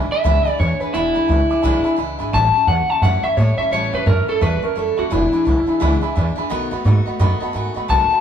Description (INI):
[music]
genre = rockabilly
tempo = 172 BPM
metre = 4/4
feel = swing 61% on 8ths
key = E mixolydian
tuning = A4 = 440 Hz
[part]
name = picked steel-string acoustic guitar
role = accompaniment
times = 0.0-8.2 s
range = E2 to F#4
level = -26 LUFS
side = left 4 dB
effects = none
[part]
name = warm upright piano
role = accompaniment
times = 0.0-8.2 s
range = D#5 to D6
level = -27 LUFS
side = right 5 dB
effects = none
[part]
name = upright bass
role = bass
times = 0.0-8.1 s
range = E1 to A2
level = -19 LUFS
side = equal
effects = none
[part]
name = electric guitar through a small old amp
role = melody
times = 0.1-8.2 s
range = E4 to A5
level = -17 LUFS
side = left 1 dB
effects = none
[sound]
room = moderate large studio reverb, RT60 1.0 s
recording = band playing live in one room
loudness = -15 LUFS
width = side -8 dB against mid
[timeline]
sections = 0.0-8.2 A section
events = upright piano fill 7.2-7.9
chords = 0.0 E7; 2.3 A7; 5.1 E7; 6.5 B7